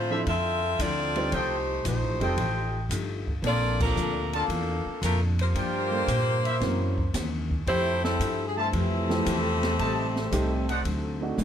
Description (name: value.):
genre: jazz, big band swing.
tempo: 113 BPM.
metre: 4/4.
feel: swing 69% on 8ths.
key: F major.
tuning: A4 = 440 Hz.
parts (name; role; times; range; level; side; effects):
bright saxophone section; melody; 0.0-11.4 s; F3 to E5; -28 LUFS; equal; none.
picked steel-string acoustic guitar; accompaniment; 0.0-11.4 s; Gb2 to G4; -36 LUFS; left 5 dB; none.
upright bass; bass; 0.0-11.4 s; F1 to Bb2; -29 LUFS; equal; none.
dark concert grand piano; accompaniment; 0.1-11.4 s; F3 to C5; -32 LUFS; right 3 dB; none.
dark trumpet section; stabs; 0.1-10.8 s; D4 to A5; -32 LUFS; equal; none.
open jazz drum kit; drums; 0.3-11.4 s; crash cymbal, hi-hat, kick drum, ride cymbal, snare drum, toms; -35 LUFS; equal; none.
clear trombone section; second line; 8.6-11.4 s; C3 to A3; -32 LUFS; equal; none.
room: light reverb.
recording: close, detailed microphones.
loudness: -24 LUFS.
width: side -9 dB against mid.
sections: 0.0-11.4 A section.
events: band accent 3.7.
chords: 0.0 Dm9; 1.3 F9; 3.4 Bbmaj7; 5.6 Gm7; 6.6 Gb7#11; 7.7 Fmaj9; 9.8 Am7b5; 10.9 D7b9.